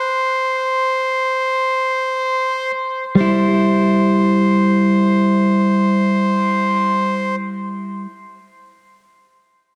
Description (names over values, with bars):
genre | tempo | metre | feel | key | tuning
reggae | free time | none | none | C major | A4 = 440 Hz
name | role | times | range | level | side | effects
melodica | melody | 0.0-7.4 s | C5 | -21 LUFS | equal | dub echo
clean electric guitar | accompaniment | 3.2-8.1 s | G3 to E4 | -17 LUFS | equal | dub echo
room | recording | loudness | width
light reverb, studio ambience | dark, warm production | -17 LUFS | mono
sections
0.0-3.2 A section; 3.2-6.6 B section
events
break 0.0-3.2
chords
0.0 N.C.; 3.2 C